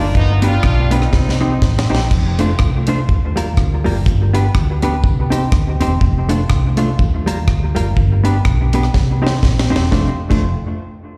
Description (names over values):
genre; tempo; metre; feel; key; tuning
ska; 123 BPM; 4/4; swing 57% on 8ths; F mixolydian; A4 = 437 Hz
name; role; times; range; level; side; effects
warm horn section; melody; 0.0-1.9 s; Bb3 to F4; -25 LUFS; equal; analog delay
hollow-body jazz guitar; accompaniment; 0.0-10.4 s; G3 to C5; -22 LUFS; equal; analog delay, slapback echo
hollow-body short-scale fingered electric bass; bass; 0.0-10.5 s; E1 to Eb2; -19 LUFS; equal; none
deep reggae drum kit; drums; 0.1-10.4 s; crash cymbal, hi-hat, kick drum, rim click, snare drum; -20 LUFS; equal; none
room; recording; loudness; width
light reverb; live gig heard through the venue's PA, recital hall reverb; -16 LUFS; mono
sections
0.0-2.1 A section; 2.1-9.9 B section; 9.9-11.2 C section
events
drum fill 1.1-2.1, 8.9-9.9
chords
0.1 G; 1.1 Cm; 2.1 F6; 3.1 Ebadd9; 4.1 G; 5.0 Cm; 6.0 F6; 7.0 Ebadd9; 8.0 G; 8.9 Cm; 9.9 F6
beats
| 0.15 0.64 1.12 1.61 | 2.10 2.59 3.08 3.57 | 4.06 4.55 5.04 5.52 | 6.01 6.50 6.99 7.48 | 7.96 8.45 8.94 9.43 | 9.92 10.40